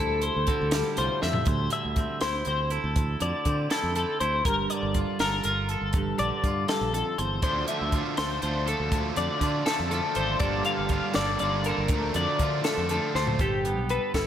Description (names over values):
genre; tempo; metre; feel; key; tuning
math rock and midwest emo; 81 BPM (dotted quarters); 6/8; straight; D minor; A4 = 440 Hz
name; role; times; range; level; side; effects
twangy electric guitar; accompaniment; 0.0-14.3 s; D2 to A4; -32 LUFS; right 5 dB; warbly pitch drift, slapback echo
twelve-string electric guitar; arpeggios; 0.0-14.3 s; G4 to F5; -28 LUFS; left 4 dB; analog chorus
fingered electric bass; bass; 0.0-14.2 s; G1 to D3; -31 LUFS; equal; none
compact cocktail drum kit; drums; 0.2-14.3 s; hi-hat, kick drum, snare drum, toms; -30 LUFS; right 1 dB; none
crunchy overdriven guitar; riff; 7.4-13.4 s; G2 to D4; -32 LUFS; right 1 dB; none
room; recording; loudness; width
moderate lush hall reverb, RT60 1.9 s, small room ambience; big arena sound; -24 LUFS; side -10 dB against mid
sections
0.0-1.5 A section; 1.5-13.4 B section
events
drum fill 1.2, 13.2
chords
0.0 Dm11; 1.5 D9sus4; 4.5 Gm9; 7.4 Dm9; 10.4 Gm9; 11.9 Dm7; 13.4 Gadd9